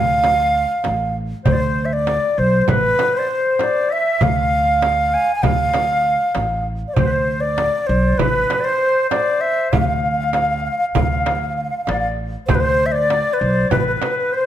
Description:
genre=Turkish makam ensemble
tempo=196 BPM (eighths)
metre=9/8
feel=straight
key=D makam nikriz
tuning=A4 = 440 Hz
part: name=bright baroque flute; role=melody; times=0.0-14.5 s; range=B4 to G#5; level=-18 LUFS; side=equal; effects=none
part: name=growling clarinet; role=second line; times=0.0-14.5 s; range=B4 to G#5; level=-24 LUFS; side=left 3 dB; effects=none
part: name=upright bass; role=bass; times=0.0-13.9 s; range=A1 to D2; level=-22 LUFS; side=right 1 dB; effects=none
part: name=darbuka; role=percussion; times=0.2-14.4 s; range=none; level=-25 LUFS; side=left 5 dB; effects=none
part: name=frame drum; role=percussion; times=0.2-14.2 s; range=none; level=-25 LUFS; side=right 7 dB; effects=none
room=moderate recital hall reverb, RT60 1.7 s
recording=none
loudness=-15 LUFS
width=side -11 dB against mid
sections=0.0-14.5 A section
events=none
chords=none

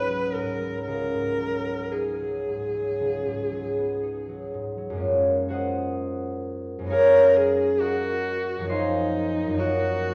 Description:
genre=classical, impressionist duo for viola and harp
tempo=56-70 BPM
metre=4/4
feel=rubato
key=unclear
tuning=A4 = 441 Hz
part: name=rich viola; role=melody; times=0.0-10.1 s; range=Eb4 to Cb5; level=-29 LUFS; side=equal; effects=none
part: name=concert harp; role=accompaniment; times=0.0-10.1 s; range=Db2 to C6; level=-26 LUFS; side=equal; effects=none
room=wet recital hall reverb, RT60 1.5 s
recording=heard from further back in the room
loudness=-25 LUFS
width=mono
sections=0.0-5.0 A section; 5.0-10.1 B section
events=none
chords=0.0 Db11; 0.8 Db9sus4; 5.0 Gbmaj9; 6.9 Db11/Gb; 8.7 Ebmadd9/Gb

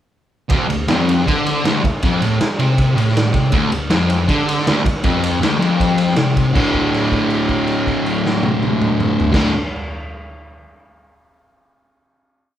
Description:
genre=garage rock duo or trio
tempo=159 BPM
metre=4/4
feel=straight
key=unclear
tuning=A4 = 440 Hz
part: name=fuzz guitar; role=riff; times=0.5-9.5 s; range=D2 to D3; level=-16 LUFS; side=left 1 dB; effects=distortion
part: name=raw garage drum kit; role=drums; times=0.5-9.4 s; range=crash cymbal, kick drum, ride cymbal, snare drum, toms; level=-19 LUFS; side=equal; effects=none
room=moderate large studio reverb, RT60 0.8 s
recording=band playing live in one room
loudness=-14 LUFS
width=side -11 dB against mid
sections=0.5-6.5 riff; 6.5-9.6 final chord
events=held note 6.5-9.3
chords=0.5 D5

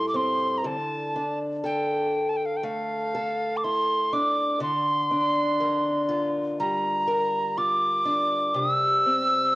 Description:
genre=celtic folk, Celtic slow air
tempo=60 BPM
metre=4/4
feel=rubato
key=D minor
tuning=A4 = 440 Hz
part: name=tin whistle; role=melody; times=0.0-9.6 s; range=F5 to E6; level=-24 LUFS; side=right 1 dB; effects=cassette tape
part: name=picked acoustic archtop guitar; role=accompaniment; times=0.0-9.6 s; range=A2 to Bb4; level=-27 LUFS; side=left 1 dB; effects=cassette tape
room=wet spring reverb, RT60 2.0 s, studio reverb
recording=home recording on cassette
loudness=-22 LUFS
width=side -19 dB against mid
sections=0.0-9.6 A section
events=none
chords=0.0 Am7; 0.7 Dmadd9; 4.6 Gm7/D; 8.6 C7

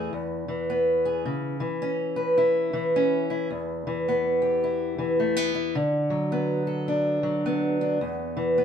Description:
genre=folk, solo fingerstyle acoustic guitar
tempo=107 BPM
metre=4/4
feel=swing 63% on 8ths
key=unclear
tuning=A4 = 442 Hz
part: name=fingerpicked steel-string acoustic guitar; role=solo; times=0.0-8.6 s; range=E2 to B4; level=-23 LUFS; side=equal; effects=none
room=wet studio reverb, RT60 0.8 s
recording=band playing live in one room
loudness=-23 LUFS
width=side -8 dB against mid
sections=0.0-8.6 A section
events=none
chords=0.1 E; 1.3 C#m; 3.5 Em; 5.7 Bm/D; 8.0 E5

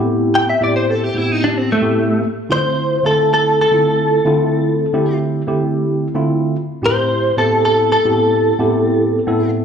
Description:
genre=blues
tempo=111 BPM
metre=4/4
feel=straight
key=A minor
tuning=A4 = 440 Hz
part: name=tine electric piano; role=accompaniment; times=0.0-9.6 s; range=A2 to A4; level=-17 LUFS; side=equal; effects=phaser, slapback echo
part: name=direct-recorded clean electric guitar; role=melody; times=0.4-9.5 s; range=A3 to G5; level=-15 LUFS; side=equal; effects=ensemble chorus, slapback echo
room=light reverb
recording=live gig heard through the venue's PA, club reverb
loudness=-13 LUFS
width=side -7 dB against mid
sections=0.0-9.6 A section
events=clean electric guitar solo 0.0-9.6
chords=0.0 Am7; 2.2 Dm7; 6.6 Am7

